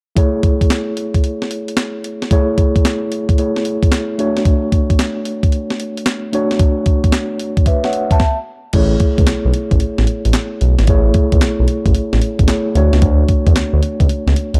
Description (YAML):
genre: R&B, new jack swing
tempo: 112 BPM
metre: 4/4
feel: swing 66% on 16ths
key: A major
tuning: A4 = 443 Hz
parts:
  - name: mellow tine electric piano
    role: accompaniment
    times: 0.2-14.6 s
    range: A3 to A5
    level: -21 LUFS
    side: equal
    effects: none
  - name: clean 12-bit digital drum machine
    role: drums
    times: 0.2-14.6 s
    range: crash cymbal, handclaps, hi-hat, kick drum, snare drum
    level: -17 LUFS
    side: equal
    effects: none
  - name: smooth synth bass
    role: bass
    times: 8.7-14.6 s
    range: G#1 to E2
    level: -17 LUFS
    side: equal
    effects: none
room: digital ambience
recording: dark, warm production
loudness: -15 LUFS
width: mono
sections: 0.2-8.7 A section; 8.7-14.6 B section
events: stop 8.2-8.7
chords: 0.2 Amaj7; 4.2 Dmaj7; 8.7 Amaj7; 12.8 Dmaj7